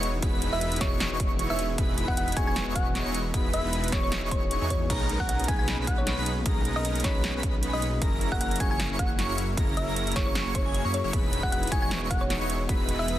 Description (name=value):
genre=future bass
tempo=154 BPM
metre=4/4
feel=swing 54% on 16ths, half-time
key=E lydian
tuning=A4 = 439 Hz
part: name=mellow tine electric piano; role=accompaniment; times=0.0-13.2 s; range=A#3 to D#5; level=-36 LUFS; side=left 3 dB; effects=medium stereo tremolo, sidechain pumping, digital delay
part: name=airy dreamy lead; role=arpeggios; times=0.0-13.2 s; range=G#5 to C#6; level=-35 LUFS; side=equal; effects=chorus, phaser, sidechain pumping
part: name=supersaw chords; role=riff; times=0.0-13.2 s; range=F#3 to C#5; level=-34 LUFS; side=right 1 dB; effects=sidechain pumping
part: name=wide detuned saw bass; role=bass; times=0.0-13.2 s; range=E1 to F#2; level=-31 LUFS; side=equal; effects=chorus, tube saturation, sidechain pumping
part: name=big-room dance drum kit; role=drums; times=0.0-13.2 s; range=crash cymbal, hi-hat, snare drum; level=-33 LUFS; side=right 1 dB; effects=none
part: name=electronic kick drum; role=drums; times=0.2-12.8 s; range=none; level=-28 LUFS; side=equal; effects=none
part: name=thumb-piano-like synth pluck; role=melody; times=0.5-13.2 s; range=C#5 to G#5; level=-33 LUFS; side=equal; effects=chorus, sidechain pumping, digital delay
room=digital ambience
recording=dense, heavily limited modern master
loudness=-24 LUFS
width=side -13 dB against mid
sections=0.0-13.2 A section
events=none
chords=0.0 Emaj7; 4.9 Bmaj13; 8.0 F#7; 11.1 Emaj7